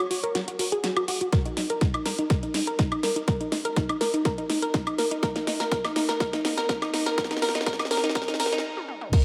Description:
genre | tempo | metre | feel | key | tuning
progressive house | 123 BPM | 4/4 | straight | Eb minor | A4 = 440 Hz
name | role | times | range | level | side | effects
glassy wavetable pluck | arpeggios | 0.0-9.2 s | Eb4 to Bb4 | -29 LUFS | equal | chorus, sidechain pumping, dub echo
pop drum kit | drums | 0.1-9.2 s | crash cymbal, hi-hat, ride cymbal, snare drum, toms, woodblock | -32 LUFS | equal | high-pass filter on snare, high-pass filter on hats, high-pass filter on perc, high-pass filter on toms, high-pass filter on cymbals
electronic kick drum | drums | 1.3-9.2 s | none | -27 LUFS | equal | none
room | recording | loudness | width
moderate lush hall reverb, RT60 2.1 s | high-pass filter | -26 LUFS | mono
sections
0.0-9.1 A section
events
build-up 0.0-9.1; drum fill 0.0-8.6, 8.8-9.1; filter sweep on synth arpeggio sound 0.0-9.1; stop 8.6-9.1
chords
none

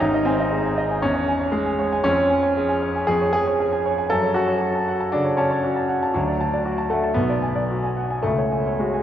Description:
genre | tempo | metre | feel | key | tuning
classical, virtuoso piano study | 117 BPM | 4/4 | rubato | F# minor | A4 = 440 Hz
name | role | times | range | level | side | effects
clear concert grand piano | solo | 0.0-9.0 s | G#1 to A5 | -19 LUFS | equal | none
room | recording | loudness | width
wet church reverb, RT60 3.1 s | worn, warbling old tape, cassette tape, warbly pitch drift | -19 LUFS | side -10 dB against mid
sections
0.0-9.0 A section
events
none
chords
0.0 G#; 1.0 C#m/E; 2.1 C#/E#; 4.1 F#m; 6.2 D; 7.2 G#m7b5/B; 8.2 C#sus4

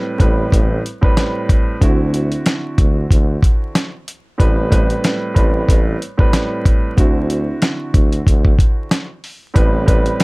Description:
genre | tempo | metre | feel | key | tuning
hip hop, boom-bap hip-hop | 93 BPM | 4/4 | swing 56% on 16ths | A dorian | A4 = 440 Hz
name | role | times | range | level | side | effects
dark grand piano | accompaniment | 0.0-10.2 s | A2 to B4 | -21 LUFS | right 1 dB | cassette tape, high-pass filter, low-pass filter, plate reverb
warm tuba | bass | 0.2-10.1 s | A1 to D2 | -20 LUFS | equal | none
dusty soul sampler-style drum kit | drums | 0.2-10.2 s | hi-hat, kick drum, snare drum | -14 LUFS | equal | none
room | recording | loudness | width
little or no reverb | dark, warm production, vinyl crackle | -13 LUFS | side -26 dB against mid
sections
0.0-9.6 A section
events
none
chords
0.0 Am9; 1.8 D9; 4.4 Am9; 7.0 D9; 9.6 Am9

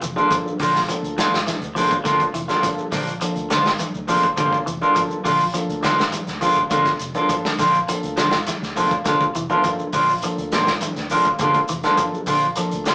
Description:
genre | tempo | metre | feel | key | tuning
afrobeat | 103 BPM | 4/4 | straight | G dorian | A4 = 440 Hz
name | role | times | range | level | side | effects
electric guitar at the edge of break-up | arpeggios | 0.0-12.9 s | Bb2 to F3 | -28 LUFS | equal | phaser
vintage muted fingered electric bass | bass | 0.0-12.8 s | F1 to D2 | -34 LUFS | equal | none
crunchy breakbeat drum kit | drums | 0.0-12.9 s | hi-hat, kick drum, snare drum | -26 LUFS | equal | none
shekere | percussion | 0.0-12.9 s | none | -34 LUFS | equal | none
barky tine electric piano | accompaniment | 0.2-12.9 s | Bb3 to A4 | -27 LUFS | equal | overdrive
electric guitar at the edge of break-up | stabs | 0.2-12.9 s | F3 to F4 | -19 LUFS | equal | none
congas | percussion | 0.2-12.9 s | none | -30 LUFS | equal | none
room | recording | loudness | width
wet studio reverb, RT60 0.5 s | rough rehearsal-room recording, small speaker sound | -17 LUFS | side -26 dB against mid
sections
0.0-12.9 A section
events
none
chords
0.0 Gm7

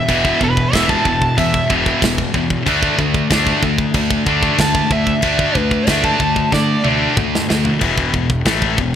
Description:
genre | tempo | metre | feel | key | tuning
heavy metal | 93 BPM | 4/4 | straight | unclear | A4 = 440 Hz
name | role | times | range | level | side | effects
high-gain lead guitar | melody | 0.0-6.8 s | B4 to A5 | -20 LUFS | right 1 dB | distortion
distorted electric guitar | riff | 0.0-9.0 s | E2 to D4 | -25 LUFS | right 1 dB | distortion
heavy high-gain guitar | riff | 0.0-9.0 s | E2 to D4 | -19 LUFS | left 8 dB | distortion
scooped high-gain guitar | riff | 0.0-7.8 s | E2 to D4 | -21 LUFS | right 11 dB | distortion
fuzz fingered electric bass | bass | 0.1-9.0 s | E1 to D3 | -23 LUFS | equal | overdrive
tight metal drum kit | drums | 0.1-8.9 s | crash cymbal, kick drum, snare drum, toms | -19 LUFS | equal | gated reverb
room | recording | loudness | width
light reverb, studio reverb | bright 1980s-style digital production | -13 LUFS | side -9 dB against mid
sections
0.0-7.8 A section; 7.8-9.0 B section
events
lead electric guitar solo 0.0-7.8; drum fill 6.5-7.8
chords
0.0 E5; 2.7 D5; 7.8 E5

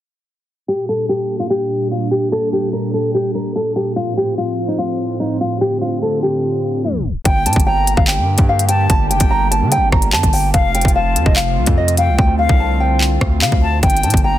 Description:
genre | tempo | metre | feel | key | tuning
hip hop, drill | 146 BPM | 4/4 | half-time | G minor | A4 = 440 Hz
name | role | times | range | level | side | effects
nylon-string guitar | melody | 0.7-14.4 s | Eb4 to Bb5 | -18 LUFS | left 1 dB | ping-pong delay
warm analog pad | sustained chords | 0.7-14.4 s | A2 to G4 | -22 LUFS | right 1 dB | lush chorus
concert flute | second line | 7.3-14.4 s | F5 to Bb5 | -24 LUFS | left 4 dB | ping-pong delay
distorted 808-style bass | bass | 7.3-14.4 s | F1 to D3 | -17 LUFS | equal | distortion
drill drum kit | drums | 7.3-14.2 s | handclaps, hi-hat, kick drum, rim click | -15 LUFS | equal | none
room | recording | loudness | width
little or no reverb | dense, heavily limited modern master, low-pass filter, tape stop | -14 LUFS | side -12 dB against mid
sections
0.7-7.3 A section; 7.3-14.4 B section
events
filter sweep 0.7-7.3; tape stop 6.8-7.3; hi-hats muted 12.2-13.8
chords
0.7 Gm; 4.0 F; 5.6 Dm7; 7.3 Gm; 10.5 F; 12.2 Dm7; 13.8 Gm

